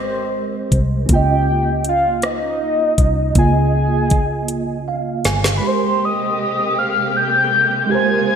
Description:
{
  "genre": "slow six-eight R&B",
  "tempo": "53 BPM (dotted quarters)",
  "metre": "6/8",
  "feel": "straight",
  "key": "Ab major",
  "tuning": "A4 = 441 Hz",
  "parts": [
    { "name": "warm velvety synth lead", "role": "melody", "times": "0.0-8.4 s", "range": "C5 to Ab6", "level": "-18 LUFS", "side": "left 1 dB", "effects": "chorus, tremolo" },
    { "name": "tine electric piano", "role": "accompaniment", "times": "0.0-8.4 s", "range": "Db3 to Ab5", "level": "-21 LUFS", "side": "right 4 dB", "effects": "ensemble chorus" },
    { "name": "vintage muted fingered electric bass", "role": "bass", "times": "0.0-5.6 s", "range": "G1 to Db2", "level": "-19 LUFS", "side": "equal", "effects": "none" },
    { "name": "smooth R&B drum kit", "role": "drums", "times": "0.7-5.6 s", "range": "hi-hat, kick drum, rim click, snare drum", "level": "-18 LUFS", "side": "equal", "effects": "gated reverb" },
    { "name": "warm studio string section", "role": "sustained chords", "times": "5.6-8.4 s", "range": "C3 to G4", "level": "-26 LUFS", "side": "left 2 dB", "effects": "none" }
  ],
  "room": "moderate lush hall reverb, RT60 2.4 s",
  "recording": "bright 1980s-style digital production",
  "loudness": "-15 LUFS",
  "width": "side -7 dB against mid",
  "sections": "0.0-5.6 A section; 5.6-8.4 B section",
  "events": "drum fill 4.5-5.6; tine electric piano fill 4.5-5.6",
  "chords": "0.0 Abmaj9; 1.1 Db69; 5.6 Abmaj9",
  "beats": "| 1.10 2.23 | 3.36 4.49 | 5.62 6.76 | 7.89"
}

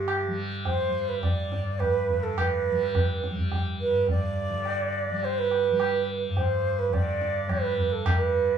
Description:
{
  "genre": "indian classical, Hindustani",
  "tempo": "105 BPM",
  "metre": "5/4",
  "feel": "straight",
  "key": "unclear",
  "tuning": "A4 = 438 Hz",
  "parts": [
    { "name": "bansuri", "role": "melody", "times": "0.0-8.6 s", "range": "G4 to D5", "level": "-26 LUFS", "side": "right 4 dB", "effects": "none" },
    { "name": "tanpura", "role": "drone", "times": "0.0-8.6 s", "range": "G2 to G3", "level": "-32 LUFS", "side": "equal", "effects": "none" },
    { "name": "tabla", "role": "percussion", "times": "0.1-8.3 s", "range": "none", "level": "-28 LUFS", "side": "equal", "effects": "none" }
  ],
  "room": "moderate studio reverb, RT60 0.6 s",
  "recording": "band playing live in one room, small room ambience",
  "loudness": "-24 LUFS",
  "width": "side -8 dB against mid",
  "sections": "0.0-8.1 A section",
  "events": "none",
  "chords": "none",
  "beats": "0.08 0.66 1.23 1.80 | 2.38 2.95 3.52 4.09 4.66 | 5.23 5.79 6.36 6.93 7.49 | 8.06"
}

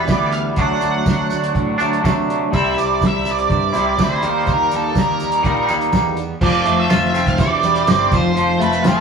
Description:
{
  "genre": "psychedelic rock",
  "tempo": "123 BPM",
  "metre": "4/4",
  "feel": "straight",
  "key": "unclear",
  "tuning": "A4 = 440 Hz",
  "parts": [
    { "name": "octave-fuzz lead guitar", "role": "melody", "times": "0.0-9.0 s", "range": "A4 to F#5", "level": "-20 LUFS", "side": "right 4 dB", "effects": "distortion" },
    { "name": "twangy electric guitar", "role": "riff", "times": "0.0-9.0 s", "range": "C3 to F4", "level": "-18 LUFS", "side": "equal", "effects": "harmonic tremolo" },
    { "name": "fuzz picked electric bass", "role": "bass", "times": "0.0-9.0 s", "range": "E1 to C3", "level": "-25 LUFS", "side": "right 1 dB", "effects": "overdrive" },
    { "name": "cloth-damped thuddy drum kit", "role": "drums", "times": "0.1-9.0 s", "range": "crash cymbal, hi-hat, kick drum, snare drum", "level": "-20 LUFS", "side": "right 1 dB", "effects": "none" },
    { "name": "tambourine", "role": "percussion", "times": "0.1-9.0 s", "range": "none", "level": "-40 LUFS", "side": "right 4 dB", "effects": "none" },
    { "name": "bright tonewheel organ", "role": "sustained chords", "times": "6.4-9.0 s", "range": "C4 to C5", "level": "-27 LUFS", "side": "right 2 dB", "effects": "slow rotary speaker, chorus vibrato" }
  ],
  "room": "wet stone room reverb, RT60 0.9 s",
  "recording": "rough rehearsal-room recording",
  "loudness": "-14 LUFS",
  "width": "side -6 dB against mid",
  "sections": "0.0-6.4 A section; 6.4-9.0 B section",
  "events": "none",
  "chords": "0.0 Em; 0.6 D; 2.5 C; 4.2 Eb; 6.4 F; 7.4 C/E; 8.1 F",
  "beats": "0.09 | 0.58 1.07 1.56 2.04 | 2.53 3.02 3.50 3.99 | 4.48 4.96 5.45 5.94 | 6.42 6.91 7.39 7.88 | 8.36 8.85"
}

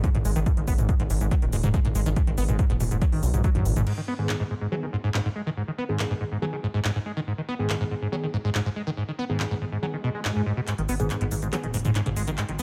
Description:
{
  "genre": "driving peak-time techno",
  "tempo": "141 BPM",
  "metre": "4/4",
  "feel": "straight",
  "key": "G# minor",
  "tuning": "A4 = 442 Hz",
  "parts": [
    { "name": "acid bass, saw", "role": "riff", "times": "0.0-12.6 s", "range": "F#2 to B3", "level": "-30 LUFS", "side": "equal", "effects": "analog chorus, vintage 12-bit sampler grit, sidechain pumping, digital delay" },
    { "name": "electronic kick drum", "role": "drums", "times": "0.0-3.5 s", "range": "none", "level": "-26 LUFS", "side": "equal", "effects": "none" },
    { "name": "techno drum kit", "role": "drums", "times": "0.0-12.6 s", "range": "crash cymbal, handclaps, hi-hat, shaker, toms", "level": "-34 LUFS", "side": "equal", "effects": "sidechain pumping on hats, sidechain pumping on perc, sidechain pumping on toms, sidechain pumping on cymbals" },
    { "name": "gritty driven synth bass", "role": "bass", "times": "0.1-3.8, 10.8-12.6 s", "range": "D#1 to B1", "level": "-29 LUFS", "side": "equal", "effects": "sidechain pumping" },
    { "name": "wavetable chord stab", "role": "stabs", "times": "4.2-11.7 s", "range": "D#3 to G#4", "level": "-35 LUFS", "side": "equal", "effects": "sidechain pumping, digital delay" },
    { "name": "swell and riser", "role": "sound effects", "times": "10.0-12.6 s", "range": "none", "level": "-39 LUFS", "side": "equal", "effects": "none" }
  ],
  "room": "light reverb",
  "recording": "none",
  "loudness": "-26 LUFS",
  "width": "mono",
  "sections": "0.0-3.9 A section; 3.9-10.7 B section; 10.7-12.6 C section",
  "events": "drum fill 3.4-3.9, 10.7-12.6; swell 10.0-10.7; build-up 10.7-12.6; filter sweep on acid bass 10.7-12.6",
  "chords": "0.0 G#m",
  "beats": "0.04 | 0.46 0.89 1.31 1.74 | 2.17 2.59 3.02 3.44 | 3.87 4.29 4.72 5.14 | 5.57 6.00 6.42 6.85 | 7.27 7.70 8.12 8.55 | 8.97 9.40 9.82 10.25 | 10.68 11.10 11.53 11.95 | 12.38"
}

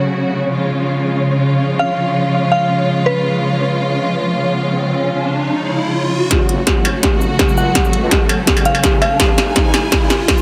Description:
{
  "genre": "half-time drum and bass",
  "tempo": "166 BPM",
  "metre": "4/4",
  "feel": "half-time",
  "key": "F# harmonic minor",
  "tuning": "A4 = 438 Hz",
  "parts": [
    { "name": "rich symphonic string section", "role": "sustained chords", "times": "0.0-10.4 s", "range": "C#3 to G#5", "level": "-20 LUFS", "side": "equal", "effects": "sidechain pumping" },
    { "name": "flickering grainy texture", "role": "texture", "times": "0.0-10.4 s", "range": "A3 to C#5", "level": "-26 LUFS", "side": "equal", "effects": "built-in reverb" },
    { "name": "glassy synth bell", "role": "melody", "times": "1.8-3.3, 7.6-9.5 s", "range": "B4 to F#5", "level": "-22 LUFS", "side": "equal", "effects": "chorus, tremolo, tape echo" },
    { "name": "riser", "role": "sound effects", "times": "4.2-10.4 s", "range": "none", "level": "-25 LUFS", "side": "equal", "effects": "none" },
    { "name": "deep soft wobble bass", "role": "bass", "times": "6.3-10.4 s", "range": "F#1 to C#2", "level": "-28 LUFS", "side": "equal", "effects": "chorus, tube saturation, high-pass filter" },
    { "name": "electronic kick drum", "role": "drums", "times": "6.3-10.4 s", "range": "none", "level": "-19 LUFS", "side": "equal", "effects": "distortion, overdrive" },
    { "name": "industrial drum kit", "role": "drums", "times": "6.3-10.4 s", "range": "hi-hat, shaker, snare drum, struck metal", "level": "-18 LUFS", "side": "equal", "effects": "overdrive, low-pass filter on snare, low-pass filter on hats, low-pass filter on perc, low-pass filter on room" }
  ],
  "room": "light reverb",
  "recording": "heavily compressed radio sound, multiband compression",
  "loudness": "-15 LUFS",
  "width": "mono",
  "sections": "0.0-6.3 A section; 6.3-10.4 B section",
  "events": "riser 4.2-6.3, 6.3-10.4; build-up 6.3-10.4; drum fill 6.3-10.4",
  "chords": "0.0 F#m; 0.5 C#; 6.3 F#m",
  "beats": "0.16 | 0.53 0.89 1.25 1.61 | 1.97 2.33 2.69 3.06 | 3.42 3.78 4.14 4.50 | 4.86 5.22 5.59 5.95 | 6.31 6.67 7.03 7.39 | 7.75 8.12 8.48 8.84 | 9.20 9.56 9.92 10.29"
}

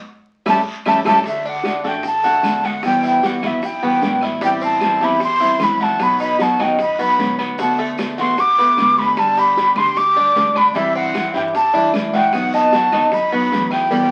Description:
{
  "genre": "latin, Cuban son and guajira",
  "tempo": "152 BPM",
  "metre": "4/4",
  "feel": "straight",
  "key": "unclear",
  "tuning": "A4 = 440 Hz",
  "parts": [
    { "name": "breathy mellow silver concert flute", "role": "melody", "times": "0.5-14.1 s", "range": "E5 to D6", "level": "-18 LUFS", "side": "equal", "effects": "none" },
    { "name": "nylon-string guitar", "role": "accompaniment", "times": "0.5-14.1 s", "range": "B2 to G4", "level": "-25 LUFS", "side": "equal", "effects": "none" },
    { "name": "Cuban tres", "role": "arpeggios", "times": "0.5-14.1 s", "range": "G3 to A4", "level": "-26 LUFS", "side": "equal", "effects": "none" },
    { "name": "upright bass", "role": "bass", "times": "0.5-14.1 s", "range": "E1 to G2", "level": "-39 LUFS", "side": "equal", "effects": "none" },
    { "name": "bongos and cowbell", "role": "percussion", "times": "0.5-14.1 s", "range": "none", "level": "-32 LUFS", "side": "equal", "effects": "none" },
    { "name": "claves", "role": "percussion", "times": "0.5-13.9 s", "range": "none", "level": "-37 LUFS", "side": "equal", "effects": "none" },
    { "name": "congas", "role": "percussion", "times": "0.5-14.1 s", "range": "none", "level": "-31 LUFS", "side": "equal", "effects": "none" },
    { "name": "guiro", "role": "percussion", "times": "0.5-14.1 s", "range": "none", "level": "-36 LUFS", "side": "equal", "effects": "none" },
    { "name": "maracas", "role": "percussion", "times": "0.5-14.1 s", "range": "none", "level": "-44 LUFS", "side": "equal", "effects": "none" }
  ],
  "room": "wet studio reverb, RT60 0.6 s",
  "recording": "very old 78 rpm record, tube saturation, vinyl crackle",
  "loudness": "-17 LUFS",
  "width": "mono",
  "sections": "0.0-1.3 A section; 1.3-13.9 B section",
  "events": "band accent 0.0-1.3; drum fill 0.5-1.3",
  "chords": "0.5 A7; 1.3 D; 2.8 Emadd9; 4.4 Am7; 6.0 B; 7.6 D6; 9.2 G5; 10.8 Cadd9; 12.3 B",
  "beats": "0.07 0.47 0.86 | 1.26 1.65 2.05 2.44 | 2.84 3.24 3.63 4.03 | 4.42 4.82 5.21 5.61 | 6.01 6.40 6.80 7.19 | 7.59 7.98 8.38 8.78 | 9.17 9.57 9.96 10.36 | 10.75 11.15 11.54 11.94 | 12.34 12.73 13.13 13.52 | 13.92"
}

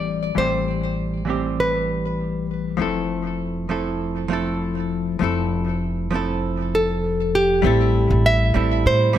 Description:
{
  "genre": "sunset chillout",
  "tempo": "99 BPM",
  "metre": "4/4",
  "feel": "straight",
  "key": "A minor",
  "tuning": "A4 = 439 Hz",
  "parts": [
    { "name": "nylon-string guitar", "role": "melody", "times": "0.0-2.5, 6.7-9.2 s", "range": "G4 to E5", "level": "-21 LUFS", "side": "right 1 dB", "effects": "digital delay" },
    { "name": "hollow-body jazz guitar", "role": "accompaniment", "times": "0.0-9.2 s", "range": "E3 to A4", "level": "-23 LUFS", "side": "moving between left 8 dB and right 6 dB", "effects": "auto-pan, low-pass filter, digital delay" },
    { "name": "upright bass", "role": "bass", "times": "0.0-9.2 s", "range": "F1 to A2", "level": "-24 LUFS", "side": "equal", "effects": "none" }
  ],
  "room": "moderate recital hall reverb, RT60 1.5 s, small room reverb",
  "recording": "none",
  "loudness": "-19 LUFS",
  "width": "side -11 dB against mid",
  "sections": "0.0-7.6 A section; 7.6-9.2 B section",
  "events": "filter sweep on hollow-body jazz guitar 0.0-7.6",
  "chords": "0.0 Am7; 2.8 Fmaj7; 7.6 Am7",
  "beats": "| 0.37 0.98 1.58 2.19 | 2.79 3.40 4.01 4.61 | 5.22 5.83 6.43 7.04 | 7.64 8.25 8.86"
}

